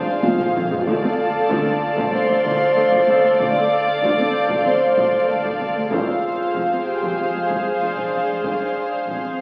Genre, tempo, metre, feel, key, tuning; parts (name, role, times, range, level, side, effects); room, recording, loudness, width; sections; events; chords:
cinematic, suspense film score; 95 BPM; 4/4; straight; D minor; A4 = 441 Hz
warm studio violin section; melody; 0.0-9.4 s; C5 to D6; -31 LUFS; equal
warm studio violin section; second line; 0.0-9.4 s; C5 to F5; -26 LUFS; equal
warm studio viola section; accompaniment; 0.0-9.4 s; F3 to A4; -29 LUFS; equal
mellow French horn section; sustained chords; 0.0-9.4 s; C4 to D5; -23 LUFS; equal
shimmering ambient pad; sustained chords; 0.0-9.4 s; F4 to F5; -34 LUFS; equal
concert harp; texture; 0.0-9.4 s; F5 to Ab6; -33 LUFS; equal
dark studio double bass section; bass; 0.2-9.1 s; F1 to D2; -37 LUFS; equal
warm studio cello section; bass; 0.2-9.3 s; D2 to F2; -34 LUFS; equal
taiko ensemble; drums; 0.2-9.4 s; -31 LUFS; equal
wet scoring stage reverb, RT60 2.0 s; very old 78 rpm record, vinyl crackle; -19 LUFS; mono
0.0-9.4 A section
drum fill 0.2-0.9
0.0 Fm; 0.9 Dm7; 5.9 Fm